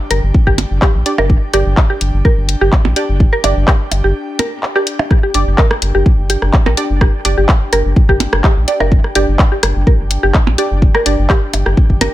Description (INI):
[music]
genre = minimal techno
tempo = 126 BPM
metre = 4/4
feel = straight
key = G minor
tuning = A4 = 441 Hz
[part]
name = airy breathy pad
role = texture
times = 0.0-12.1 s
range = D4 to G5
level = -26 LUFS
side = left 2 dB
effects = chorus, sidechain pumping
[part]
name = mallet-like synth pluck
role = riff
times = 0.1-12.1 s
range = G4 to Bb4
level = -18 LUFS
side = equal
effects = chorus, sidechain pumping, ping-pong delay
[part]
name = rubbery square bass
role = bass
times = 0.1-12.1 s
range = G1 to Bb1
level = -15 LUFS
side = equal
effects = sidechain pumping
[part]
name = house drum kit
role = drums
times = 0.1-12.1 s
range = handclaps, hi-hat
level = -18 LUFS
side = left 2 dB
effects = studio reverb
[part]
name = electronic kick drum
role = drums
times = 0.3-12.0 s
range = none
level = -11 LUFS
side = equal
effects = studio reverb
[part]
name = electronic percussion blips and rim click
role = percussion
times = 0.6-12.1 s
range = none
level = -20 LUFS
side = right 3 dB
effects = studio reverb, dub echo
[part]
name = filtered dub chord stab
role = stabs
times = 1.1-11.2 s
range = D4 to D5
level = -21 LUFS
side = right 3 dB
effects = chorus, dub echo
[sound]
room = little or no reverb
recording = none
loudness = -10 LUFS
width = side -15 dB against mid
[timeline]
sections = 0.0-12.1 A section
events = fade-in on analog synth pad 0.0-12.1; break 4.2-5.1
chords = 0.0 G5